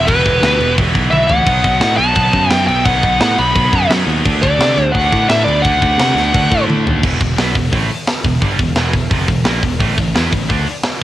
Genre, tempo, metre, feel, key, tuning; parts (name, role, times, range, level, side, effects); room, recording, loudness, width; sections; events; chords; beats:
heavy metal; 173 BPM; 4/4; straight; E minor; A4 = 440 Hz
high-gain lead guitar; melody; 0.0-6.6 s; B4 to B5; -15 LUFS; left 1 dB; distortion, cassette tape
nasal lead guitar with a parked wah; second line; 0.0-6.6 s; G4 to F#5; -26 LUFS; right 8 dB; overdrive, analog delay
distorted electric guitar; riff; 0.0-10.7 s; E2 to E4; -21 LUFS; right 8 dB; distortion
heavy high-gain guitar; riff; 0.0-10.7 s; E2 to E4; -23 LUFS; left 8 dB; distortion
picked electric bass; bass; 0.0-10.7 s; E1 to C3; -18 LUFS; equal
tight metal drum kit; drums; 0.1-10.9 s; crash cymbal, hi-hat, kick drum, snare drum, toms; -17 LUFS; equal
studio reverb; home recording on cassette; -11 LUFS; side -14 dB against mid
0.0-7.0 A section; 7.0-11.0 B section
drum fill 1.1-1.5, 6.7-7.0
0.0 Em; 1.5 B; 4.2 D; 7.0 Em; 9.8 A5
| 0.08 0.43 0.78 1.12 | 1.47 1.82 2.17 2.51 | 2.86 3.21 3.56 3.90 | 4.25 4.60 4.94 5.29 | 5.64 5.99 6.33 6.68 | 7.03 7.37 7.72 8.07 | 8.41 8.76 9.11 9.46 | 9.80 10.15 10.50 10.84